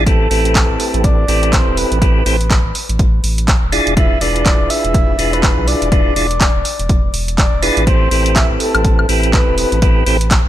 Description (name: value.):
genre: deep house.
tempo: 123 BPM.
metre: 4/4.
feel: swing 59% on 16ths.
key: A minor.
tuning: A4 = 440 Hz.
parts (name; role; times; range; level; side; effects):
percussive tonewheel organ; stabs; 0.0-10.2 s; C4 to D5; -18 LUFS; right 1 dB; chorus vibrato, fast rotary speaker, sidechain pumping, ping-pong delay.
round analog bass; bass; 0.0-10.5 s; E1 to B1; -18 LUFS; equal; tube saturation, sidechain pumping.
breathy flute-like synth lead; melody; 0.1-10.3 s; A4 to E5; -21 LUFS; equal; chorus, ping-pong delay.
electronic kick drum; drums; 0.1-10.4 s; none; -14 LUFS; equal; none.
punchy analog drum machine; drums; 0.1-10.4 s; handclaps, hi-hat, woodblock; -19 LUFS; right 1 dB; none.
room: digital ambience.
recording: none.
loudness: -11 LUFS.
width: side -13 dB against mid.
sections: 0.0-10.5 A section.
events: none.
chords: 0.1 Am9; 3.7 E7b9; 7.9 Am9.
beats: | 0.07 0.55 1.04 1.53 | 2.02 2.50 2.99 3.48 | 3.97 4.46 4.94 5.43 | 5.92 6.41 6.89 7.38 | 7.87 8.36 8.85 9.33 | 9.82 10.31.